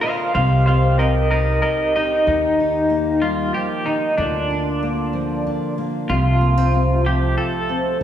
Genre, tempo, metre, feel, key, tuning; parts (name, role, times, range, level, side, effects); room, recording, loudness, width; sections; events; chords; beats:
acoustic folk duo or small band; 94 BPM; 3/4; straight; A4 = 439 Hz
electric guitar through a small old amp; melody; 0.0-8.0 s; D4 to F5; -20 LUFS; equal; tremolo, tape echo
fingerpicked steel-string acoustic guitar; accompaniment; 0.0-8.0 s; C3 to Bb4; -23 LUFS; left 1 dB
mellow accordion; sustained chords; 0.0-8.0 s; C3 to G4; -30 LUFS; right 1 dB
upright bass; bass; 0.3-8.0 s; C2 to Eb2; -21 LUFS; equal
wet large studio reverb, RT60 1.2 s; heard from further back in the room; -16 LUFS; side -10 dB against mid
0.0-2.3 A section; 2.3-8.0 B section
clean electric guitar solo 0.0-2.3
0.3 Cm; 2.3 Eb; 4.2 Bb/D; 6.1 F/C
| 0.35 0.98 1.62 | 2.26 2.90 3.54 | 4.18 4.82 5.45 | 6.09 6.73 7.37 | 8.01